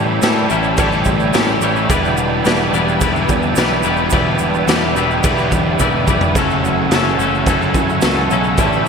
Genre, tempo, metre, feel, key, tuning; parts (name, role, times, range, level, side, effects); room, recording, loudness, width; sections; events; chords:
indie rock; 108 BPM; 4/4; straight; E dorian; A4 = 437 Hz
tonewheel organ; sustained chords; 0.0-8.9 s; A4 to D6; -25 LUFS; equal; slow rotary speaker, chorus vibrato
crunchy overdriven guitar; riff; 0.0-8.9 s; E2 to G4; -18 LUFS; right 8 dB; ensemble chorus, ping-pong delay
twelve-string electric guitar; riff; 0.0-8.9 s; F#2 to B4; -18 LUFS; left 11 dB
picked electric bass; bass; 0.0-8.9 s; E1 to A2; -22 LUFS; right 1 dB
raw garage drum kit; drums; 0.2-8.7 s; crash cymbal, kick drum, snare drum, toms; -19 LUFS; equal; gated reverb
tube shaker; percussion; 0.2-8.9 s; -30 LUFS; right 16 dB
light reverb, small room ambience; bright 1980s-style digital production; -13 LUFS; side -6 dB against mid
0.0-8.9 A section
drum fill 5.8-6.4
0.0 A7; 1.9 Em7; 6.4 F#m7